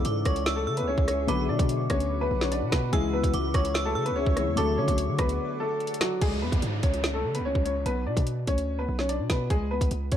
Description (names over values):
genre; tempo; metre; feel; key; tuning
hip hop, drill; 146 BPM; 4/4; half-time; C# phrygian; A4 = 440 Hz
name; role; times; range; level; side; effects
metallic FM bell; second line; 0.0-5.8 s; C#6 to E6; -35 LUFS; right 4 dB; chorus, digital delay
dark concert grand piano; accompaniment; 0.0-6.2 s; C#3 to F#4; -33 LUFS; left 6 dB; low-pass filter
granular cloud pad; sustained chords; 0.0-6.2 s; F#4 to D6; -35 LUFS; left 2 dB; built-in reverb
distorted 808-style bass; bass; 0.0-10.2 s; B1 to D3; -30 LUFS; equal; distortion
drill drum kit; drums; 0.0-10.2 s; crash cymbal, hi-hat, kick drum, rim click, snare drum; -27 LUFS; equal; none
bright upright piano; melody; 0.3-10.2 s; F#3 to D5; -29 LUFS; left 1 dB; low-pass filter, digital delay
downlifter; sound effects; 6.2-9.5 s; none; -38 LUFS; equal; none
room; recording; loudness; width
light reverb; dark, warm production; -24 LUFS; side -10 dB against mid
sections
0.0-6.2 A section; 6.2-10.2 B section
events
break 5.4-6.2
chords
0.0 C#m; 1.3 Bm; 2.9 C#m; 4.6 D; 6.2 C#5; 7.9 Bm; 9.5 C#5